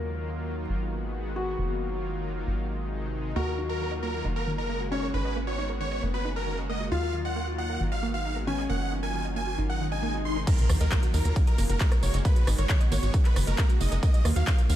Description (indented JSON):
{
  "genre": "uplifting trance",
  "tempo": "135 BPM",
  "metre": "4/4",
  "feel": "straight",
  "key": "Eb minor",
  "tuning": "A4 = 440 Hz",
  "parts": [
    { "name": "felt-muted upright piano", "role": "second line", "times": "0.0-10.4 s", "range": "Db4 to Bb4", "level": "-36 LUFS", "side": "left 3 dB", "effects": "ping-pong delay" },
    { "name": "lush unison pad", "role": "sustained chords", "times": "0.0-14.7 s", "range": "C3 to Gb4", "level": "-35 LUFS", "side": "left 1 dB", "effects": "chorus, sidechain pumping" },
    { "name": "tight sequencer bass", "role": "bass", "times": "0.0-14.8 s", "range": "Gb1 to Eb2", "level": "-29 LUFS", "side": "equal", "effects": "sidechain pumping" },
    { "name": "big supersaw lead", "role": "melody", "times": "3.4-14.8 s", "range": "Bb4 to C6", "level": "-34 LUFS", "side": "right 1 dB", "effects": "sidechain pumping, ping-pong delay" },
    { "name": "wide unison pluck", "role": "arpeggios", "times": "3.4-14.8 s", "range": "Eb3 to Eb5", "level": "-37 LUFS", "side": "right 5 dB", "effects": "sidechain pumping, ping-pong delay" },
    { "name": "swell and impact", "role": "sound effects", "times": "9.8-12.2 s", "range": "none", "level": "-34 LUFS", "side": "left 1 dB", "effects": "none" },
    { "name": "big-room dance drum kit", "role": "drums", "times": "10.5-14.8 s", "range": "crash cymbal, handclaps, hi-hat, ride cymbal, rim click, tambourine", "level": "-34 LUFS", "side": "right 1 dB", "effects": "low-pass filter on hats, low-pass filter on cymbals, low-pass filter on perc, low-pass filter on snare, low-pass filter on room" },
    { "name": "electronic kick drum", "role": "drums", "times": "10.5-14.6 s", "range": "none", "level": "-23 LUFS", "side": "equal", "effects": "none" }
  ],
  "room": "digital ambience",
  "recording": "dark, warm production",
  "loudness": "-25 LUFS",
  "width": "side -12 dB against mid",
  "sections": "0.0-10.5 A section; 10.5-14.8 B section",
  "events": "swell 9.8-10.5; drop 10.5-14.8; impact 10.5-12.2",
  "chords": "0.0 Ebmadd9; 0.7 Abm7; 1.6 Ebmadd9/Gb; 2.5 Ab; 3.4 Ebmadd9; 4.2 Gbadd9; 5.1 Abm7; 6.0 Gbadd9; 6.9 Ebmadd9; 7.8 Abm7; 8.7 Ebmadd9/Gb; 9.6 Ab; 10.5 Ebmadd9; 11.4 Gbadd9; 12.2 Abm7; 13.1 Gbadd9; 14.0 Ebmadd9"
}